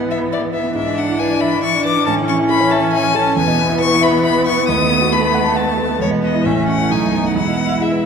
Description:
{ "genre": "quick classical-period movement for piano quartet", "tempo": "137 BPM", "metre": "3/4", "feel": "rubato", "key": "A major, E major from 3.4 s", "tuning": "A4 = 440 Hz", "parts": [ { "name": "rich cello", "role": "second line", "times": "0.0-8.1 s", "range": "E3 to A3", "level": "-23 LUFS", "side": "right 5 dB", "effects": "none" }, { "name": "rich viola", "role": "accompaniment", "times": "0.0-8.1 s", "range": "B3 to E4", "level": "-20 LUFS", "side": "right 1 dB", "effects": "none" }, { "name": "warm concert grand piano", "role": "accompaniment", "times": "0.0-8.1 s", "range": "A1 to B5", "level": "-18 LUFS", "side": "equal", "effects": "none" }, { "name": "rich violin", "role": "melody", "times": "0.1-8.1 s", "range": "C#5 to D#6", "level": "-19 LUFS", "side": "left 6 dB", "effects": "none" } ], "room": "wet scoring stage reverb, RT60 1.9 s", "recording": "minimal, uncompressed stereo recording", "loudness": "-14 LUFS", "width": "side -6 dB against mid", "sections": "0.0-8.1 A section", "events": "none", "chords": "0.0 E/G#; 0.8 E7/G#; 2.1 A; 3.4 E; 4.7 B7/D#; 6.0 E; 6.5 A; 6.9 B7; 7.4 E" }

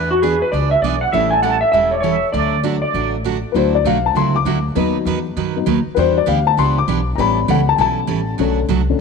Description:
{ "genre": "country", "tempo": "198 BPM", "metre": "4/4", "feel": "swing 63% on 8ths", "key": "D major", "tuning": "A4 = 440 Hz", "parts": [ { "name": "clean lap steel guitar", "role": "melody", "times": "0.0-3.1 s", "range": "F#4 to G#5", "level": "-17 LUFS", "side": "equal", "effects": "slapback echo" }, { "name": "trumpet with plunger mute", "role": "second line", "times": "0.0-3.1 s", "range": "F#4 to A5", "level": "-24 LUFS", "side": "right 9 dB", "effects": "none" }, { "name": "picked steel-string acoustic guitar", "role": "accompaniment", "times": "0.0-8.8 s", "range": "B2 to B4", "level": "-21 LUFS", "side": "right 11 dB", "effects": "none" }, { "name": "upright bass", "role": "bass", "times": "0.0-9.0 s", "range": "E1 to F#2", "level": "-21 LUFS", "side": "left 1 dB", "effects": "none" }, { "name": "dark upright piano", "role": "accompaniment", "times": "1.1-9.0 s", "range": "D3 to D6", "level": "-18 LUFS", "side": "left 12 dB", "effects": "none" } ], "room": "moderate plate reverb, RT60 3.3 s", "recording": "1960s-style stereo with parts hard left and right", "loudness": "-14 LUFS", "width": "side -5 dB against mid", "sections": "0.0-3.6 A section; 3.6-9.0 B section", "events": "upright piano solo 3.6-9.0", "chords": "0.0 E7; 1.1 A7; 2.3 D; 3.6 Dadd9; 4.8 B/D#; 6.0 Em7; 7.2 A7; 8.4 Bm7" }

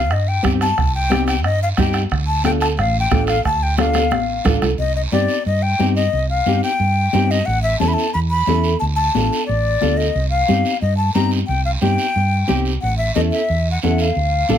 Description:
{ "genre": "latin, cumbia", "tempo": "179 BPM", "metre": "4/4", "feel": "straight", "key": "C dorian", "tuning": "A4 = 438 Hz", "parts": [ { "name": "breathy jazz flute", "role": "melody", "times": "0.0-14.6 s", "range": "D5 to B5", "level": "-20 LUFS", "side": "left 2 dB", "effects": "none" }, { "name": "hollow-body short-scale fingered electric bass", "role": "bass", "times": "0.0-14.6 s", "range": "A1 to G2", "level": "-19 LUFS", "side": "right 1 dB", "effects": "none" }, { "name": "bombo", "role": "percussion", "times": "0.1-4.8 s", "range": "none", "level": "-22 LUFS", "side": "right 3 dB", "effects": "none" }, { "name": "congas", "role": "percussion", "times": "0.1-14.6 s", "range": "none", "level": "-24 LUFS", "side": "left 8 dB", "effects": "none" }, { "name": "guiro", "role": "percussion", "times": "0.1-14.6 s", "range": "none", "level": "-30 LUFS", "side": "right 6 dB", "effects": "none" }, { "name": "nylon-string guitar", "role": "accompaniment", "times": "0.4-14.6 s", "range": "C4 to A4", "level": "-21 LUFS", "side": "right 1 dB", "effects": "none" } ], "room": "light reverb", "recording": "close, detailed microphones", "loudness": "-15 LUFS", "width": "side -9 dB against mid", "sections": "0.0-4.8 A section; 4.8-14.6 B section", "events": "drum fill 3.8-4.8", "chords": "0.0 Cm; 2.1 Dm; 4.8 Cm; 7.5 A; 8.8 Dm; 10.2 Cm; 12.8 A" }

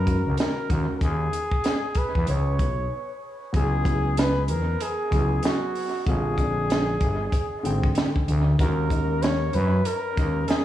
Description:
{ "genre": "hip hop, jazz-hop", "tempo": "95 BPM", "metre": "4/4", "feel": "swing 60% on 16ths", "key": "C# dorian", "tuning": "A4 = 440 Hz", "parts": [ { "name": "mellow flugelhorn", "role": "melody", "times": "0.0-10.6 s", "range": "F#4 to C#5", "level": "-28 LUFS", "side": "equal", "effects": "dub echo" }, { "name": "growling FM bass", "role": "bass", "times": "0.0-10.5 s", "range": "G1 to F#2", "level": "-24 LUFS", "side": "equal", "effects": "none" }, { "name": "dark baby grand piano", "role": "accompaniment", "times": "0.1-10.6 s", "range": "D3 to G5", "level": "-31 LUFS", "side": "left 1 dB", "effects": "dub echo" }, { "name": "compact cocktail drum kit", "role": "drums", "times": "0.1-10.6 s", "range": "hi-hat, kick drum, snare drum", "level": "-26 LUFS", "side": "equal", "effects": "dub echo" } ], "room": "light reverb", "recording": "echo-heavy mix, studio reverb", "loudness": "-21 LUFS", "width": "side -12 dB against mid", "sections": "0.0-3.5 A section; 3.5-10.6 B section", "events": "break 2.9-3.5", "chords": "0.0 D#m7; 0.7 G#5/D#; 2.3 Bsus2; 3.5 C#m7; 6.1 A#7; 8.6 D#m7" }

